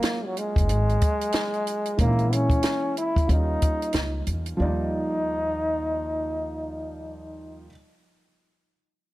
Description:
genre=hip hop, jazz-hop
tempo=92 BPM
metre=4/4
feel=swing 60% on 16ths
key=Eb major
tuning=A4 = 442 Hz
part: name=warm trombone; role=melody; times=0.0-7.7 s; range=Gb3 to Fb4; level=-27 LUFS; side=equal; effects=none
part: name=dark concert grand piano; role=accompaniment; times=0.0-7.7 s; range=Fb3 to D5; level=-32 LUFS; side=right 1 dB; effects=none
part: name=compact cocktail drum kit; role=drums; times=0.0-4.6 s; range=hi-hat, kick drum, snare drum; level=-24 LUFS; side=equal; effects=none
part: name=upright bass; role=bass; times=0.6-7.7 s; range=F1 to Fb2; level=-27 LUFS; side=equal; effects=none
room=small room ambience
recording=none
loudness=-22 LUFS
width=side -17 dB against mid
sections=0.0-4.6 A section; 4.6-7.2 B section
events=none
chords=0.0 Gbmaj9; 2.0 Bbm7b5; 3.3 Eb7; 4.6 Ebmaj9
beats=0.03 0.69 1.34 | 1.99 2.64 3.29 3.95 | 4.60 5.25 5.90 6.55

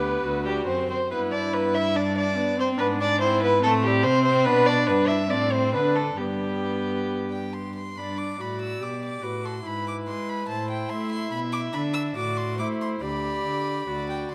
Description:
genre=quick classical-period movement for string quartet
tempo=142 BPM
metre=4/4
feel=rubato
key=G major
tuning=A4 = 439 Hz
part: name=warm violin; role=melody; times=0.0-14.3 s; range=G3 to E6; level=-34 LUFS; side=equal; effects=none
part: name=dark violin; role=second line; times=0.0-14.3 s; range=G4 to E5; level=-28 LUFS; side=equal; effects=none
part: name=rich viola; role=accompaniment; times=0.0-14.3 s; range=B3 to G4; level=-32 LUFS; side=equal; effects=none
part: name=rich cello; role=bass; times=0.0-14.3 s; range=D2 to A3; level=-32 LUFS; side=equal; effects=none
room=moderate concert hall reverb, RT60 1.8 s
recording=none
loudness=-25 LUFS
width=mono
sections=0.0-8.0 A section; 8.0-14.3 A section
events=none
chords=0.2 D; 1.1 G; 2.8 E7/G#; 3.6 Am; 4.5 G/B; 5.3 Am; 5.7 D5; 6.2 G; 9.7 E/G#; 10.5 Am; 11.3 Bmadd11; 12.2 Am; 13.0 G/D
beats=0.24 0.67 | 1.10 1.53 1.96 2.37 | 2.79 3.21 3.63 4.05 | 4.47 4.88 5.31 5.74 | 6.18 6.64 7.09 7.53 | 7.97 8.39 8.81 9.23 | 9.66 10.07 10.49 10.90 | 11.32 11.74 12.16 12.59 | 13.01 13.44 13.87 14.30

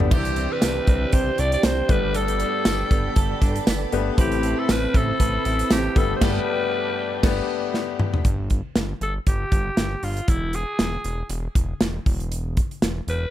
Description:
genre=1980s-style pop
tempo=118 BPM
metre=4/4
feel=swing 55% on 16ths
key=unclear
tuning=A4 = 439 Hz
part: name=warm grand piano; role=accompaniment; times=0.0-8.3 s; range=G2 to D5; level=-28 LUFS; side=left 9 dB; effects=none
part: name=ensemble organ-string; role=sustained chords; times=0.0-8.2 s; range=C4 to B5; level=-31 LUFS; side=equal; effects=ensemble chorus
part: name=direct-recorded clean electric guitar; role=riff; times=0.0-6.4 s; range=E3 to B4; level=-30 LUFS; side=right 6 dB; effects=lush chorus
part: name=fat analog bass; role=bass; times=0.0-13.3 s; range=E1 to C2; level=-26 LUFS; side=equal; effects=none
part: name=modern studio drum kit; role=drums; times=0.0-13.2 s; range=crash cymbal, hi-hat, kick drum, snare drum, tambourine, toms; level=-22 LUFS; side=equal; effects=none
part: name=raspy alto saxophone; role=melody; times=0.1-13.3 s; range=E4 to D5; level=-26 LUFS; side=equal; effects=none
part: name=tambourine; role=percussion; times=0.6-5.8 s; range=none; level=-40 LUFS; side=right 14 dB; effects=none
room=light reverb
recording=none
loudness=-20 LUFS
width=side -12 dB against mid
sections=0.0-8.2 A section; 8.2-13.3 B section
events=band accent 6.2-8.2; drum fill 7.7-8.2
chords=0.1 Cadd9; 1.9 Gadd9; 4.2 Amadd9; 6.0 Gadd9; 8.2 N.C.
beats=| 0.11 0.62 1.13 1.64 | 2.15 2.65 3.16 3.67 | 4.18 4.69 5.20 5.71 | 6.21 6.72 7.23 7.74 | 8.25 8.76 9.27 9.77 | 10.28 10.79 11.30 11.81 | 12.32 12.82

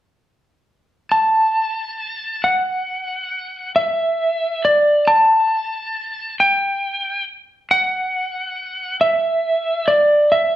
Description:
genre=rock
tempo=46 BPM (dotted quarters)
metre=6/8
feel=straight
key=E minor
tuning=A4 = 442 Hz
part: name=electric slide guitar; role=melody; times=1.1-10.6 s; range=D5 to A5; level=-16 LUFS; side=equal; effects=none
room=wet large studio reverb, RT60 0.9 s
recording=band playing live in one room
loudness=-16 LUFS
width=side -13 dB against mid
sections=1.1-10.6 A section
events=none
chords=none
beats=| 1.12 2.44 | 3.76 5.08 | 6.39 7.71 | 9.03 10.34

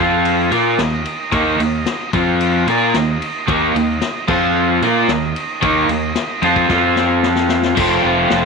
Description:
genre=garage rock duo or trio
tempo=112 BPM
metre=4/4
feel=straight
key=unclear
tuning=A4 = 439 Hz
part: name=combo organ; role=sustained chords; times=0.0-8.5 s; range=Eb4 to F5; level=-26 LUFS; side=right 12 dB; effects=none
part: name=crunchy overdriven guitar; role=riff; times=0.0-8.5 s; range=Eb3 to Bb4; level=-15 LUFS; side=equal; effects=none
part: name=fuzz fingered electric bass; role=bass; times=0.0-8.5 s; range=F1 to Bb2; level=-24 LUFS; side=right 1 dB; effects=overdrive, tube saturation
part: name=vintage drum kit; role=drums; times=0.2-8.4 s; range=crash cymbal, kick drum, ride cymbal, snare drum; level=-23 LUFS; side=left 6 dB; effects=none
room=light reverb, small room ambience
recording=1960s-style stereo with parts hard left and right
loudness=-14 LUFS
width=side -4 dB against mid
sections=0.0-7.8 A section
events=drum fill 6.7-7.8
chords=0.0 F5; 0.5 Eb5; 2.1 F5; 2.7 Eb5; 4.3 F5; 4.8 Eb5; 6.7 F5; 7.8 F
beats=0.26 0.79 | 1.33 1.87 2.40 2.94 | 3.48 4.02 4.55 5.09 | 5.63 6.16 6.70 7.24 | 7.77 8.31

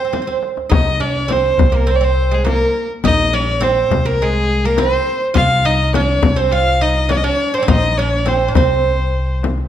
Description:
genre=Persian modal ensemble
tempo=103 BPM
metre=4/4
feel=straight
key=C dastgah shur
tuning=A4 = 440 Hz
part: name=rich violin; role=melody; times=0.0-9.4 s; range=Ab4 to F5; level=-18 LUFS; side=left 2 dB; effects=none
part: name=oud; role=second line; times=0.0-9.4 s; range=Ab3 to F4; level=-19 LUFS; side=right 7 dB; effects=none
part: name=frame drum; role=percussion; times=0.1-9.6 s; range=none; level=-20 LUFS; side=left 4 dB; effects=none
part: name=tombak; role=percussion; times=0.1-9.7 s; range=none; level=-22 LUFS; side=left 3 dB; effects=none
part: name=upright bass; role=bass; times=0.7-9.6 s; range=Bb1 to C2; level=-18 LUFS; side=equal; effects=none
room=moderate recital hall reverb, RT60 1.4 s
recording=none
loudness=-13 LUFS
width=side -10 dB against mid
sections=0.7-9.7 A section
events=drum fill 0.1-0.7, 9.4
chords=none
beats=0.12 | 0.71 1.29 1.87 2.45 | 3.04 3.62 4.20 4.78 | 5.36 5.95 6.53 7.11 | 7.69 8.28 8.86 9.44

